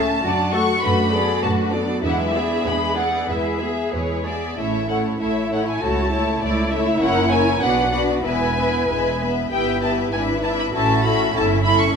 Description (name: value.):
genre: quick classical-period movement for string orchestra.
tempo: 93-103 BPM.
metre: 2/4.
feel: rubato.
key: A major.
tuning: A4 = 440 Hz.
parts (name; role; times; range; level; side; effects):
rich symphonic violin section; melody; 0.0-12.0 s; C#5 to C#6; -23 LUFS; left 1 dB; none.
rich chamber violin section; second line; 0.0-11.9 s; E4 to F#5; -24 LUFS; left 5 dB; none.
warm studio viola section; accompaniment; 0.0-11.9 s; F#3 to G#4; -24 LUFS; right 2 dB; none.
rich chamber double bass section; bass; 0.0-11.9 s; E1 to F#2; -26 LUFS; right 3 dB; none.
warm chamber cello section; bass; 0.2-12.0 s; C#4 to B4; -26 LUFS; right 1 dB; none.
room: wet recital hall reverb, RT60 1.7 s.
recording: minimal, uncompressed stereo recording.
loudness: -18 LUFS.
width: side -6 dB against mid.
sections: 0.0-4.6 A section; 4.6-12.0 B section.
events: none.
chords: 0.2 D/F#; 0.8 Bm7/F#; 2.0 E7; 3.3 E; 4.6 A; 5.8 A/C#; 7.0 F#7; 7.6 Bm; 8.2 E; 9.5 Em/G; 10.1 E7/G#; 10.7 A; 11.3 A7/G.